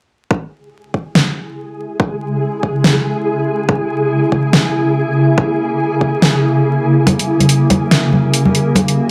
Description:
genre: deep dubstep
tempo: 142 BPM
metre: 4/4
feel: swing 60% on 16ths, half-time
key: C# dorian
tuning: A4 = 440 Hz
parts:
  - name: granular cloud pad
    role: sustained chords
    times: 2.1-9.1 s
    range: C#3 to F#4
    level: -18 LUFS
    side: equal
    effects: built-in reverb
  - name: electronic kick drum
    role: drums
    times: 0.3-8.9 s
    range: none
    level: -20 LUFS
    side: equal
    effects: high-pass filter on kick, high-pass filter on room
  - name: flickering grainy texture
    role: texture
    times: 1.6-9.1 s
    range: G#4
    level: -24 LUFS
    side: equal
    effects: built-in reverb
  - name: deep house drum kit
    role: drums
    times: 1.2-9.0 s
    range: hi-hat, snare drum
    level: -16 LUFS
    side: equal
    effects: none
  - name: congas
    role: percussion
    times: 7.1-8.9 s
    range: none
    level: -19 LUFS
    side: equal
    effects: none
room: moderate digital room reverb, RT60 1.0 s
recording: vinyl crackle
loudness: -15 LUFS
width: mono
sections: 0.3-9.1 A section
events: none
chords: 0.3 C#m; 7.1 F#

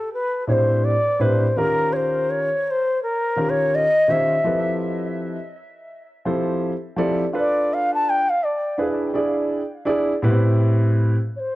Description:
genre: hip hop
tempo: 83 BPM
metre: 4/4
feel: swing 59% on 16ths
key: A minor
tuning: A4 = 440 Hz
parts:
  - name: bansuri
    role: melody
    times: 0.0-11.6 s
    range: A4 to A5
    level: -21 LUFS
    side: left 1 dB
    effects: plate reverb, tape echo
  - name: dark baby grand piano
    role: accompaniment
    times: 0.5-11.2 s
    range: A2 to D5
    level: -20 LUFS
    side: equal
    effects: none
room: wet small room ambience, RT60 0.5 s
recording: worn, warbling old tape, cassette tape, warbly pitch drift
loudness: -18 LUFS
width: side -17 dB against mid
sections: 0.0-11.6 A section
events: bansuri solo 0.0-11.6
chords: 0.0 Am11; 1.6 D#9; 4.5 Fmaj9#11; 7.4 Bm7b5; 8.8 E7; 10.2 Am9

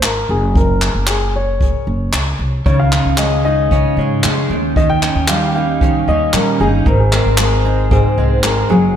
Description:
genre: acoustic pop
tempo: 114 BPM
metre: 4/4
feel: straight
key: unclear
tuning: A4 = 439 Hz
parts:
  - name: dark upright piano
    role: melody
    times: 0.0-9.0 s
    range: Ab4 to G5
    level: -19 LUFS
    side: left 2 dB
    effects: slapback echo, digital delay
  - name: upright bass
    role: bass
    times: 0.0-9.0 s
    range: Gb1 to Bb2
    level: -18 LUFS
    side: equal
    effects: none
  - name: jazz brush drum kit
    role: drums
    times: 0.0-8.6 s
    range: handclaps, kick drum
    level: -18 LUFS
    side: equal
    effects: none
  - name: fingerpicked steel-string acoustic guitar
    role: accompaniment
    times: 2.7-9.0 s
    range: Ab2 to Eb4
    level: -16 LUFS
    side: right 1 dB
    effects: double-tracked left and right
  - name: direct-recorded clean electric guitar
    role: arpeggios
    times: 2.7-9.0 s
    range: Eb3 to Ab4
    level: -24 LUFS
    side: right 6 dB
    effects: spring reverb, slapback echo
room: moderate recital hall reverb, RT60 1.6 s, small room ambience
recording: big arena sound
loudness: -12 LUFS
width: side -9 dB against mid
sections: 0.0-9.0 A section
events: none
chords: 0.3 Gb; 2.7 Dbsus2; 4.5 Eb7; 6.9 Ab

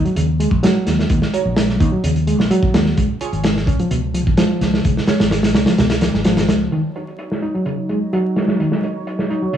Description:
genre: breakbeat, breaks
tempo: 128 BPM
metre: 4/4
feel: straight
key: Eb minor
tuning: A4 = 443 Hz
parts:
  - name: overdriven reed electric piano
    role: riff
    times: 0.0-9.6 s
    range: Cb3 to Eb4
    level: -20 LUFS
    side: equal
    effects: low-pass filter, cassette tape, analog delay
  - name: filtered dub chord stab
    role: stabs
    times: 0.0-9.6 s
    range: Db4 to Db5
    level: -27 LUFS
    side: right 7 dB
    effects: phaser, wide subtle chorus, cassette tape, analog delay
  - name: crunchy breakbeat drum kit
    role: drums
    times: 0.1-9.6 s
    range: hi-hat, kick drum, snare drum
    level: -18 LUFS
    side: equal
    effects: low-pass filter on kick, cassette tape, low-pass filter on hats, low-pass filter on snare, low-pass filter on room
  - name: fingered electric bass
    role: bass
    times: 0.2-6.7 s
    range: Ab1 to Eb2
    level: -19 LUFS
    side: equal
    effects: none
  - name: lush unison pad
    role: sustained chords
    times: 6.7-9.6 s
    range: Gb3 to Db5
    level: -23 LUFS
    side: right 2 dB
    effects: chorus, sidechain pumping, cassette tape
room: light reverb, small room ambience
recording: home recording on cassette, vinyl crackle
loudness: -15 LUFS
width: side -9 dB against mid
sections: 0.0-6.7 A section; 6.7-9.6 B section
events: kick drops out 5.8-6.7; filter sweep on reed electric piano 6.7-9.6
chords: 0.0 Ebm7; 3.0 Db; 6.7 Ebm7

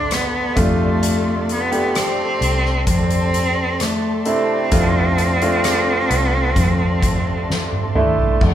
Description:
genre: pop ballad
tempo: 65 BPM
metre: 4/4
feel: straight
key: unclear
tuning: A4 = 440 Hz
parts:
  - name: rich cello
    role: melody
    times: 0.0-8.0 s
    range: A3 to D4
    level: -21 LUFS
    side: equal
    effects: none
  - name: clear concert grand piano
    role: accompaniment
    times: 0.0-8.5 s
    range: C3 to G4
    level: -22 LUFS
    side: right 1 dB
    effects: none
  - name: ethereal airy pad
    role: sustained chords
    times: 0.0-8.5 s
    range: A4 to C6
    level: -27 LUFS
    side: equal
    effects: ensemble chorus, built-in reverb
  - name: vintage muted fingered electric bass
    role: bass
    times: 0.0-8.5 s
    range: C2 to F2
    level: -21 LUFS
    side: equal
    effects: none
  - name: soft-mallet drum kit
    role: drums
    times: 0.1-8.5 s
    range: crash cymbal, hi-hat, kick drum, rim click, snare drum, toms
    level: -22 LUFS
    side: equal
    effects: none
room: light reverb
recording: band playing live in one room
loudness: -15 LUFS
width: side -10 dB against mid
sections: 0.0-8.4 A section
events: drum fill 7.5-8.4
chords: 0.0 Dm7; 0.6 F6

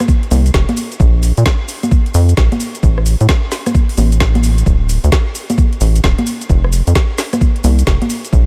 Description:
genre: UK garage, two-step garage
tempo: 131 BPM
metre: 4/4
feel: swing 64% on 16ths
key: unclear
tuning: A4 = 440 Hz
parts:
  - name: garage drum kit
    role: drums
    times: 0.0-8.4 s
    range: congas, hi-hat, rim click, shaker, snare drum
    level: -21 LUFS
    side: equal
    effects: overdrive
  - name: electronic kick drum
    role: drums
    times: 0.1-8.4 s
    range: none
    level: -15 LUFS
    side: equal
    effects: overdrive
  - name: rubbery square bass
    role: bass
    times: 0.3-8.5 s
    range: D1 to Bb2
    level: -14 LUFS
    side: equal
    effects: none
room: little or no reverb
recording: none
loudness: -13 LUFS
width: mono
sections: 0.0-8.5 A section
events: none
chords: none

